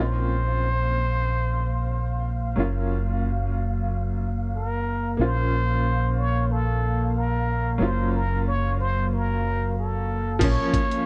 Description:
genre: trip hop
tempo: 92 BPM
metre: 4/4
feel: swing 55% on 16ths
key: Bb minor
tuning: A4 = 440 Hz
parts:
  - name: trumpet with plunger mute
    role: melody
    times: 0.0-11.1 s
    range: A4 to Db5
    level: -31 LUFS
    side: equal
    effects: dub echo
  - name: bright upright piano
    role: accompaniment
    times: 0.0-11.1 s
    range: F3 to F4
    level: -33 LUFS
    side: equal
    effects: tremolo
  - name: warbly tape-like pad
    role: sustained chords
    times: 0.4-11.1 s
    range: Gb3 to F5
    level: -35 LUFS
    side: equal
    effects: chorus, built-in reverb
  - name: deep dub fingered electric bass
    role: bass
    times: 0.0-10.6 s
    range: Gb1 to Bb1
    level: -27 LUFS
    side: equal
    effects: none
  - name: wind-like tuned noise texture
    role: texture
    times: 0.7-10.4 s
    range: F5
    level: -46 LUFS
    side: equal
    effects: none
  - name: dusty soul sampler-style drum kit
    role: drums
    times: 10.4-11.1 s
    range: crash cymbal, hi-hat, kick drum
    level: -27 LUFS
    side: equal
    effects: small room reverb
room: little or no reverb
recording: worn, warbling old tape, cassette tape, warbly pitch drift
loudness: -25 LUFS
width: mono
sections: 0.0-10.4 A section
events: none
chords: 0.0 Bbmadd9; 2.6 Gbmaj7; 5.2 Bbmadd9; 7.8 Gbmaj7; 10.4 Bbm

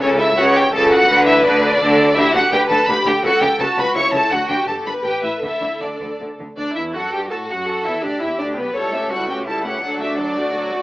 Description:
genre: quick classical-period movement for string orchestra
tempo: 167 BPM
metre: 3/4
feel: rubato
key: D major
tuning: A4 = 440 Hz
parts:
  - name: rich chamber violin section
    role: melody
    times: 0.0-10.8 s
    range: B4 to C#6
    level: -19 LUFS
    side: equal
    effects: none
  - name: rich chamber violin section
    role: second line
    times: 0.0-10.8 s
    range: B3 to D5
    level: -24 LUFS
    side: left 1 dB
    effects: none
  - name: rich chamber viola section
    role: accompaniment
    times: 0.0-10.8 s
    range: F#3 to C#5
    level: -21 LUFS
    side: equal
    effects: none
  - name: rich chamber cello section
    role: bass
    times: 0.0-10.8 s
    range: G2 to A4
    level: -23 LUFS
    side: equal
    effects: none
  - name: rich chamber double bass section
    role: bass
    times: 0.0-10.8 s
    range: G1 to A2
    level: -27 LUFS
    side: equal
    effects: none
room: light reverb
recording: AM radio sound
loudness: -15 LUFS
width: side -17 dB against mid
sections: 0.0-6.6 A section; 6.6-10.8 B section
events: none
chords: 0.0 A/C#; 1.1 D5; 3.2 A/C#; 4.3 D; 4.7 G; 5.0 A5; 5.4 D5; 6.6 D; 7.7 Em7; 8.8 A7/C#; 9.8 D

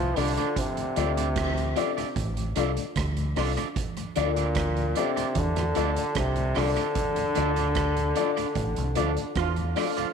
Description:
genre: roots reggae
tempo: 75 BPM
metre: 4/4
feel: straight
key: D minor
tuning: A4 = 438 Hz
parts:
  - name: bright trombone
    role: melody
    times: 0.0-9.4 s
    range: Bb2 to F3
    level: -28 LUFS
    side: left 1 dB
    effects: tape echo
  - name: mellow tonewheel organ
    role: accompaniment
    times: 0.0-10.1 s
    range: D2 to D4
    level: -38 LUFS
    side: left 10 dB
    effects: chorus vibrato, slow rotary speaker
  - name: deep dub fingered electric bass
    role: bass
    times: 0.0-9.7 s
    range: A1 to E2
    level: -28 LUFS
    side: equal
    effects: none
  - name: electric guitar at the edge of break-up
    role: accompaniment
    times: 0.2-10.1 s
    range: D4 to D5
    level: -34 LUFS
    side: right 11 dB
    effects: tape echo
  - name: dark upright piano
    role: stabs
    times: 0.2-10.0 s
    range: D4 to D5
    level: -32 LUFS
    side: left 12 dB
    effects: none
  - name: vintage drum kit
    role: drums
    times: 0.2-10.1 s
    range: hi-hat, kick drum, rim click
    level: -32 LUFS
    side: right 4 dB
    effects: tape echo
  - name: mellow horn section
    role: second line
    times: 9.0-10.1 s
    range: D3 to F4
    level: -31 LUFS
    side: right 12 dB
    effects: tape echo
room: moderate echo chamber reverb, RT60 2.2 s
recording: 1960s-style stereo with parts hard left and right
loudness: -24 LUFS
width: side -6 dB against mid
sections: 0.0-10.1 A section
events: band accent 7.0-10.1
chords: 0.0 Dm

